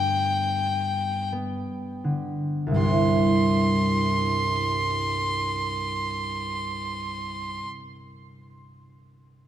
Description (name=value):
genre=celtic folk, Celtic slow air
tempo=41 BPM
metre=4/4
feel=rubato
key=C major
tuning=A4 = 441 Hz
part: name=clear fiddle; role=melody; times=0.0-7.7 s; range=G5 to C6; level=-27 LUFS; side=equal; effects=none
part: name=concert harp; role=accompaniment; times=0.0-7.8 s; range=C2 to C5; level=-25 LUFS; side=equal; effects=none
room=moderate church reverb, RT60 3.4 s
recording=dark, warm production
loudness=-23 LUFS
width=side -10 dB against mid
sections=0.0-2.8 A section; 2.8-8.7 B section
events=slowing down 0.0-2.8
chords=0.0 G; 2.8 Cadd9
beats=1.32 | 2.78 4.28 5.72 7.18